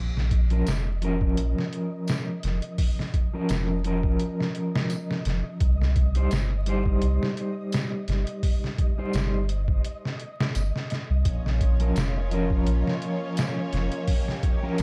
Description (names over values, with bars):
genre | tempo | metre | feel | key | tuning
trip hop | 85 BPM | 4/4 | swing 54% on 16ths | Bb dorian | A4 = 441 Hz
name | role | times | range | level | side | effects
soft dub sub bass | bass | 0.0-14.8 s | F1 to C2 | -27 LUFS | equal | none
flickering grainy texture | texture | 0.3-14.8 s | Eb5 | -46 LUFS | equal | built-in reverb
trip hop sampler-style drum kit | drums | 0.2-14.8 s | hi-hat, kick drum, snare drum | -29 LUFS | equal | studio reverb
mellow electric guitar | accompaniment | 0.5-14.8 s | F3 to C5 | -32 LUFS | equal | tremolo, tape echo
tambourine | percussion | 0.7-14.8 s | none | -47 LUFS | equal | none
warm symphonic violin section | sustained chords | 11.3-14.8 s | Bb3 to Db5 | -36 LUFS | equal | vintage 12-bit sampler grit
room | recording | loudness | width
digital ambience | dark, warm production, vinyl crackle | -26 LUFS | mono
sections
0.0-14.8 A section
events
none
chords
0.0 Bbm; 5.6 Cm; 11.3 Bbm